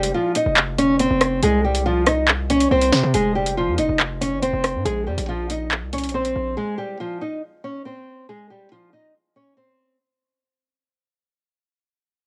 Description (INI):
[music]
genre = hip hop, drill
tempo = 140 BPM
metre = 4/4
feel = half-time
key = F minor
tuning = A4 = 440 Hz
[part]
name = nylon-string guitar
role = melody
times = 0.0-10.0 s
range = F3 to Eb5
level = -23 LUFS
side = equal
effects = cassette tape, plate reverb
[part]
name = hard-hitting 808-style bass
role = bass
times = 0.0-6.6 s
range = F1 to C3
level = -27 LUFS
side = equal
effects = none
[part]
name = drill drum kit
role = drums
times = 0.0-6.3 s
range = handclaps, hi-hat, rim click, snare drum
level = -23 LUFS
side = equal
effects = cassette tape
[sound]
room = moderate small room reverb, RT60 0.5 s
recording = home recording on cassette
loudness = -20 LUFS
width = mono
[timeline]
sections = 0.0-3.1 A section; 3.1-10.0 B section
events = drum fill 2.7-3.1; fade-out 3.1-10.0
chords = 0.0 F5; 1.4 Cm; 3.1 Fm; 4.9 Bbm; 6.6 Fm